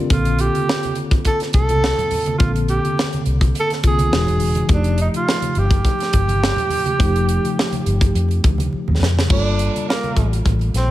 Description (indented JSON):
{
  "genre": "lush 1970s-style soul",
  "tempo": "104 BPM",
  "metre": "4/4",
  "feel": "swing 54% on 16ths",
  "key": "unclear",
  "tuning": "A4 = 440 Hz",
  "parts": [
    { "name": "mellow tine electric piano", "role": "accompaniment", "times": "0.0-10.9 s", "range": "C#3 to D5", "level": "-24 LUFS", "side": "left 2 dB", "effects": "medium stereo tremolo" },
    { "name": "breathy tenor saxophone", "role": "melody", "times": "0.1-10.9 s", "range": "Bb3 to A4", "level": "-22 LUFS", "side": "right 2 dB", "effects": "slapback echo" },
    { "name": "vintage muted fingered electric bass", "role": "bass", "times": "0.1-10.9 s", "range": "E1 to F2", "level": "-19 LUFS", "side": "equal", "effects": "none" },
    { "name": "tight funk drum kit", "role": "drums", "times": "0.1-10.9 s", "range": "crash cymbal, hi-hat, kick drum, snare drum", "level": "-20 LUFS", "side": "equal", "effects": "none" },
    { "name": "congas", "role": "percussion", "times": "0.2-10.9 s", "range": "none", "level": "-28 LUFS", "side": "right 3 dB", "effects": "none" }
  ],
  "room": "studio reverb",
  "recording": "none",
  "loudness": "-16 LUFS",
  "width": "side -14 dB against mid",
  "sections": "0.0-9.3 A section; 9.3-10.9 B section",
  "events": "drum fill 8.7-9.3; tenor saxophone solo 9.3-10.9",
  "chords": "0.1 Bbmaj9; 4.1 Emaj9; 4.7 F9; 9.3 Gm9"
}